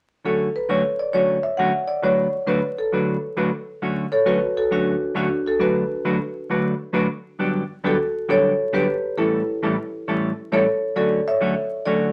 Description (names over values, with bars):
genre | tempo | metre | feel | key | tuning
country | 134 BPM | 4/4 | swing 68% on 8ths | D major | A4 = 440 Hz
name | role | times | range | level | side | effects
hollow-body jazz guitar | accompaniment | 0.2-12.1 s | G2 to B4 | -25 LUFS | equal | none
marimba with medium mallets | melody | 0.3-12.1 s | D4 to F#5 | -24 LUFS | equal | none
room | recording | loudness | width
moderate studio reverb, RT60 0.5 s | vinyl crackle | -22 LUFS | mono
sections
0.2-3.8 A section; 3.8-12.1 B section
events
none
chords
0.2 Dmaj7; 2.0 Bm7/D; 3.8 Dmaj7; 5.6 Bm7/D; 7.4 Gmaj9; 9.2 A7; 11.0 Dmaj7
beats
| 0.25 0.69 1.14 1.59 | 2.03 2.48 2.93 3.37 | 3.82 4.26 4.71 5.16 | 5.60 6.05 6.50 6.94 | 7.39 7.84 8.29 8.73 | 9.18 9.62 10.07 10.52 | 10.97 11.41 11.86